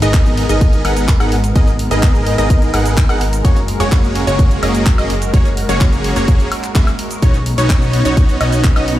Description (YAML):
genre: EDM, festival progressive house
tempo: 127 BPM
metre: 4/4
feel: straight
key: G# minor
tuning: A4 = 440 Hz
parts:
  - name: lush unison pad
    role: sustained chords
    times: 0.0-9.0 s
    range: G#3 to C#5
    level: -23 LUFS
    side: equal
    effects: chorus, phaser, sidechain pumping
  - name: wide unison pluck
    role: arpeggios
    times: 0.0-8.9 s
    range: C#5 to F#5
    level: -25 LUFS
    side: equal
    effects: sidechain pumping, digital delay
  - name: supersaw chords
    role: riff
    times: 0.0-8.9 s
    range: A#3 to F#5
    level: -19 LUFS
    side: equal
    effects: vintage 12-bit sampler grit, sidechain pumping, digital delay
  - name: fat analog bass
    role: bass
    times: 0.0-9.0 s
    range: F#1 to B1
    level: -18 LUFS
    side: equal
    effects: sidechain pumping
  - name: house drum kit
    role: drums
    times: 0.0-9.0 s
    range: handclaps, hi-hat, shaker, woodblock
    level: -24 LUFS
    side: equal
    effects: none
  - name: impact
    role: sound effects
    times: 0.0-1.6 s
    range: none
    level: -25 LUFS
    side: equal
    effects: none
  - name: electronic kick drum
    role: drums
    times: 0.1-8.7 s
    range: none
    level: -12 LUFS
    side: equal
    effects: none
room: digital ambience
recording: played on a big sound system in a bare room, stone room reverb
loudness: -11 LUFS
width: side -14 dB against mid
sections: 0.0-9.0 A section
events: impact 0.0-1.6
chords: 0.0 G#madd9; 3.4 F#add9; 7.2 Badd9